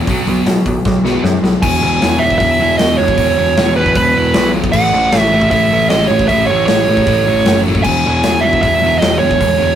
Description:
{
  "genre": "punk rock",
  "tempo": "154 BPM",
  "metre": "4/4",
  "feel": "straight",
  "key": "E major",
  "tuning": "A4 = 440 Hz",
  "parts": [
    { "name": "overdriven semi-hollow guitar", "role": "riff", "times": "0.0-9.8 s", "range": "E2 to B3", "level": "-16 LUFS", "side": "left 1 dB", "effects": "none" },
    { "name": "overdriven picked electric bass", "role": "bass", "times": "0.1-9.8 s", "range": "E1 to B2", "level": "-18 LUFS", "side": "left 1 dB", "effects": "none" },
    { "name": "big rock drum kit", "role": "drums", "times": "0.1-9.5 s", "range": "crash cymbal, hi-hat, kick drum, snare drum", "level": "-17 LUFS", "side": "left 1 dB", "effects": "none" },
    { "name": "dark smooth lead guitar", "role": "melody", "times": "1.6-9.8 s", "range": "B4 to G#5", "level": "-14 LUFS", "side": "right 3 dB", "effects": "overdrive" }
  ],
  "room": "light reverb",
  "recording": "rough rehearsal-room recording",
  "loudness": "-10 LUFS",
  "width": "side -10 dB against mid",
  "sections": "0.0-1.6 A section; 1.6-9.8 B section",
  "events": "drum fill 0.8-1.6",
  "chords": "0.1 B5; 1.6 E5; 4.7 A; 7.8 E"
}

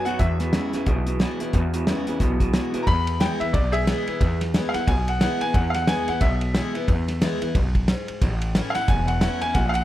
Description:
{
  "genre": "rockabilly",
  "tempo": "180 BPM",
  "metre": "4/4",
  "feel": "swing 60% on 8ths",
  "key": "E major",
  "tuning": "A4 = 440 Hz",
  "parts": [
    { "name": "bright upright piano", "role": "melody", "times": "0.0-9.8 s", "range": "G#4 to B5", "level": "-26 LUFS", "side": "equal", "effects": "slapback echo" },
    { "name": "picked steel-string acoustic guitar", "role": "accompaniment", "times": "0.0-9.8 s", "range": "E2 to F#4", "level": "-28 LUFS", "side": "left 2 dB", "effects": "none" },
    { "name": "electric guitar through a small old amp", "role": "riff", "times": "0.0-2.9 s", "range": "E2 to F#3", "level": "-28 LUFS", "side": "right 2 dB", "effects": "spring reverb" },
    { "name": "upright bass", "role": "bass", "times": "0.1-9.8 s", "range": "E1 to E2", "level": "-24 LUFS", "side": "equal", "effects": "none" },
    { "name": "cloth-damped thuddy drum kit", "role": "drums", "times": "0.1-9.8 s", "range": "hi-hat, kick drum, ride cymbal, snare drum", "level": "-24 LUFS", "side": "equal", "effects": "none" }
  ],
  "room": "small room ambience",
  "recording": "none",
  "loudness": "-20 LUFS",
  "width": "side -14 dB against mid",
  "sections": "0.0-2.9 A section; 2.9-9.8 B section",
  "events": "upright piano solo 2.9-9.8",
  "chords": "0.2 E; 8.2 A"
}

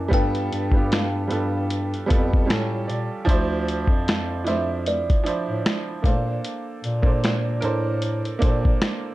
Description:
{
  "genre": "lo-fi hip hop",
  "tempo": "76 BPM",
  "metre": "4/4",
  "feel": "swing 57% on 16ths",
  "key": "D minor",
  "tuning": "A4 = 440 Hz",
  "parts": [
    { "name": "kalimba", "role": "melody", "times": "0.0-7.6 s", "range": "D5 to A5", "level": "-30 LUFS", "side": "equal", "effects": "low-pass filter, tape echo, plate reverb" },
    { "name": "bright upright piano", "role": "accompaniment", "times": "0.0-9.1 s", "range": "E3 to A5", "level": "-26 LUFS", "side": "right 3 dB", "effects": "low-pass filter, plate reverb" },
    { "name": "dark bass clarinet", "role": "bass", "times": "0.0-8.8 s", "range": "D2 to Bb2", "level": "-26 LUFS", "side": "equal", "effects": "none" },
    { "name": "lo-fi sampler-style drum kit", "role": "drums", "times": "0.1-9.0 s", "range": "finger snaps, hi-hat, kick drum, snare drum", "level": "-22 LUFS", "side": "equal", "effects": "none" }
  ],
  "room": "light reverb",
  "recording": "dark, warm production",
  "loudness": "-20 LUFS",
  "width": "side -17 dB against mid",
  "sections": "0.0-9.1 A section",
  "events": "upright piano fill 1.7-3.3",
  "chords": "0.1 G9; 2.5 A7b13; 3.3 Dm9; 6.0 Bbmaj9"
}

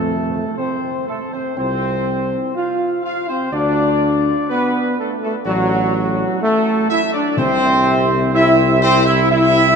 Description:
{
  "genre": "classical",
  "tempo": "62 BPM",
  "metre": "4/4",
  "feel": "straight",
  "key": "unclear",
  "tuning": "A4 = 439 Hz",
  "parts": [
    { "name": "dark trumpet section", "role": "melody", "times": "0.0-9.8 s", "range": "F#4 to F5", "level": "-20 LUFS", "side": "right 2 dB", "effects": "none" },
    { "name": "mellow trombone section", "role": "sustained chords", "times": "0.0-9.8 s", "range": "F#3 to F4", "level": "-17 LUFS", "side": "equal", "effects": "none" },
    { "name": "dark tuba", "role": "bass", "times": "0.0-9.8 s", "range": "A1 to F2", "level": "-22 LUFS", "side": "right 1 dB", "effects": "none" },
    { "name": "clear French horn section", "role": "sustained chords", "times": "1.6-9.8 s", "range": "F4 to E5", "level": "-27 LUFS", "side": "left 1 dB", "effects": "none" },
    { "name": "timpani", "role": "percussion", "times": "7.4-8.8 s", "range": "C3", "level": "-30 LUFS", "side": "equal", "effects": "none" }
  ],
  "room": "wet cathedral reverb, RT60 5.5 s",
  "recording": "in a vast, echoing space",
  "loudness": "-15 LUFS",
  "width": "side -6 dB against mid",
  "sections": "0.0-9.8 A section",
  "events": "none",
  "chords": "0.0 F; 3.5 D; 7.4 C"
}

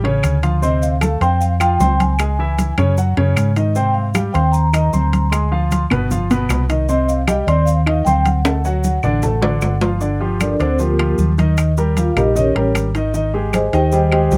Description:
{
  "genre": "Afro-Cuban jazz",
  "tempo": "153 BPM",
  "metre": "4/4",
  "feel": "straight",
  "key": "G minor",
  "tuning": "A4 = 440 Hz",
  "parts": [
    { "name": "warm baby grand piano", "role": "accompaniment", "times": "0.0-14.4 s", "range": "B2 to C6", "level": "-23 LUFS", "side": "equal", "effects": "none" },
    { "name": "hollow-body short-scale fingered electric bass", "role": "bass", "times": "0.0-14.4 s", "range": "G1 to G#2", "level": "-20 LUFS", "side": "equal", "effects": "none" },
    { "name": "timbales", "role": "percussion", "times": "0.0-14.4 s", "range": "none", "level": "-26 LUFS", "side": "equal", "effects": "none" },
    { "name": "congas", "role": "percussion", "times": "0.1-14.4 s", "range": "none", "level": "-26 LUFS", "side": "equal", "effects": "none" },
    { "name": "claves", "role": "percussion", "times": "0.2-14.3 s", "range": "none", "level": "-29 LUFS", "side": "equal", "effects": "none" },
    { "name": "maracas", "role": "percussion", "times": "0.2-14.4 s", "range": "none", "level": "-38 LUFS", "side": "equal", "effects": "none" },
    { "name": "vibraphone with soft mallets", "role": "melody", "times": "0.6-14.3 s", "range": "Bb3 to C6", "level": "-22 LUFS", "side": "equal", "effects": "none" }
  ],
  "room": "little or no reverb",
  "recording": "close, detailed microphones",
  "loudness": "-17 LUFS",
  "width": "mono",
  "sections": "0.0-10.0 A section; 10.0-14.4 B section",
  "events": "drum fill 8.4-10.0; vibraphone solo 10.0-14.4",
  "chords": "0.0 Aaug; 0.6 Dm7; 2.2 C#m; 3.0 F#sus2; 3.8 Abmaj9; 5.3 Dm7b5; 6.1 G7; 6.9 Cmadd9; 8.4 D; 10.0 Gm7; 11.6 Eb7; 13.1 Abmaj7"
}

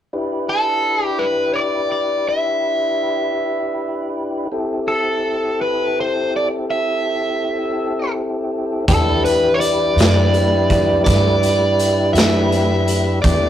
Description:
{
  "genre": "slow blues",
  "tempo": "55 BPM (dotted quarters)",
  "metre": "12/8",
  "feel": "straight",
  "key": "E minor",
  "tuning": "A4 = 439 Hz",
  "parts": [
    { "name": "tonewheel organ", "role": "sustained chords", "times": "0.1-13.5 s", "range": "B3 to B4", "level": "-21 LUFS", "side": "left 1 dB", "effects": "slow rotary speaker" },
    { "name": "biting overdriven guitar", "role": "melody", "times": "0.5-13.5 s", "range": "A4 to E5", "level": "-18 LUFS", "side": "equal", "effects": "phaser" },
    { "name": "upright bass", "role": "bass", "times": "8.9-13.5 s", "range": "E2 to G2", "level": "-19 LUFS", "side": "right 1 dB", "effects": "none" },
    { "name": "raw garage drum kit", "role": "drums", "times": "8.9-13.4 s", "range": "hi-hat, kick drum, snare drum", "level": "-19 LUFS", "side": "equal", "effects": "none" }
  ],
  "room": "moderate studio reverb, RT60 0.6 s",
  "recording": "rough rehearsal-room recording, tube saturation",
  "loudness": "-16 LUFS",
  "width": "side -10 dB against mid",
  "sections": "0.1-8.9 A section; 8.9-13.5 B section",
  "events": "none",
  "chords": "0.1 Em7; 4.5 Am7; 8.9 Em7"
}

